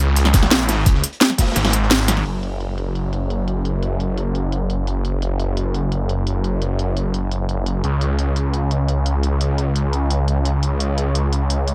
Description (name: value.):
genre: dark technical drum and bass.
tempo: 172 BPM.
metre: 4/4.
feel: straight.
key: unclear.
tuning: A4 = 440 Hz.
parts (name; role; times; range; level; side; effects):
snarling distorted saw bass; bass; 0.0-11.7 s; F#1 to C#2; -21 LUFS; equal; sidechain pumping.
crunchy breakbeat drum kit; drums; 0.2-2.2 s; hi-hat, snare drum; -29 LUFS; equal; high-pass filter on hats, high-pass filter on snare, high-pass filter on room.
drum and bass drum kit; drums; 0.2-11.7 s; hi-hat, snare drum; -22 LUFS; equal; low-pass filter on hats, low-pass filter on snare, low-pass filter on room.
electronic kick drum; drums; 0.3-1.5 s; none; -18 LUFS; equal; none.
room: little or no reverb.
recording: none.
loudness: -20 LUFS.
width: mono.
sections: 0.0-2.3 A section; 2.3-11.7 B section.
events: drop 0.0-2.3; kick drops out 1.6-2.3.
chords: none.